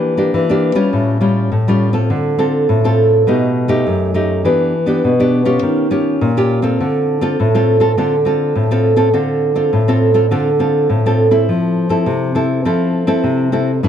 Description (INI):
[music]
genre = samba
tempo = 102 BPM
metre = 4/4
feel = straight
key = D minor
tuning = A4 = 440 Hz
[part]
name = nylon-string guitar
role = solo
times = 0.0-13.9 s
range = F#2 to A4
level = -12 LUFS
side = equal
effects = none
[sound]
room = moderate recital hall reverb, RT60 1.4 s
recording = close, detailed microphones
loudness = -12 LUFS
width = side -9 dB against mid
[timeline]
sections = 0.0-11.5 A section; 11.5-13.9 B section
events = none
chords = 0.0 Em7b5; 0.9 A7alt; 2.1 Dm7; 3.3 B7b13; 4.5 Em7; 5.6 Eb9; 6.8 Dm7; 11.5 Fmaj7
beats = 0.35 0.94 1.52 | 2.11 2.69 3.28 3.87 | 4.45 5.04 5.62 6.21 | 6.79 7.38 7.97 8.55 | 9.14 9.72 10.31 10.90 | 11.48 12.07 12.66 13.24 | 13.83